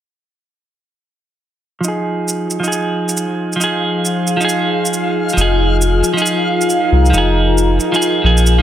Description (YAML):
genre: future garage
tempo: 136 BPM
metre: 4/4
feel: swing 62% on 16ths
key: F minor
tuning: A4 = 445 Hz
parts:
  - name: clean electric guitar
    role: accompaniment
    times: 1.8-8.6 s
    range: F3 to Ab4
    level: -17 LUFS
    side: right 2 dB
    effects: low-pass filter, dub echo
  - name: deep dark ambient pad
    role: sustained chords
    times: 3.7-8.6 s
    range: F4 to C6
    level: -19 LUFS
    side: left 1 dB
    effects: chorus, built-in reverb
  - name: shaker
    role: drums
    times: 1.8-8.6 s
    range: none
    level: -22 LUFS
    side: right 3 dB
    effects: small room ambience
  - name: backwards swelling texture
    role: texture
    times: 3.7-8.6 s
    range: F5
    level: -23 LUFS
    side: right 1 dB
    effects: built-in reverb
  - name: warm sub bass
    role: bass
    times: 5.4-8.6 s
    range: F1 to C2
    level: -13 LUFS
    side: equal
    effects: none
room: moderate recital hall reverb, RT60 1.4 s, digital ambience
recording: none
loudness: -13 LUFS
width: side -11 dB against mid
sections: 1.8-8.6 A section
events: filter sweep on ambient pad 1.8-8.6; filter sweep on clean electric guitar 1.8-8.6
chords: 1.8 Fm7